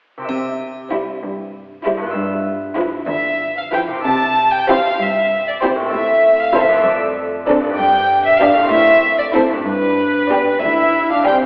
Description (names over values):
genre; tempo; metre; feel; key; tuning
cinematic, playful, whimsical film cue; 64 BPM (dotted quarters); 6/8; straight; C major; A4 = 440 Hz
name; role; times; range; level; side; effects
concert harp; arpeggios; 0.2-11.5 s; F2 to E5; -23 LUFS; equal; none
warm studio cello section; bass; 0.3-11.4 s; D2 to C3; -26 LUFS; equal; none
triangle; percussion; 0.3-1.5 s; none; -42 LUFS; equal; none
warm chamber violin section; melody; 0.9-11.4 s; B4 to A5; -14 LUFS; equal; none
warm studio violin section; second line; 0.9-11.5 s; E4 to D5; -21 LUFS; equal; none
dark chamber viola section; accompaniment; 0.9-11.5 s; F3 to E4; -22 LUFS; equal; none
room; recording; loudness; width
wet scoring stage reverb, RT60 1.9 s; heard from further back in the room, telephone sound; -13 LUFS; side -36 dB against mid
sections
0.3-4.1 A section; 4.1-11.5 B section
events
none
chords
0.3 C; 2.2 G6; 4.1 C; 5.9 Am; 6.9 Dm7/F; 7.8 G; 8.7 Am; 9.7 G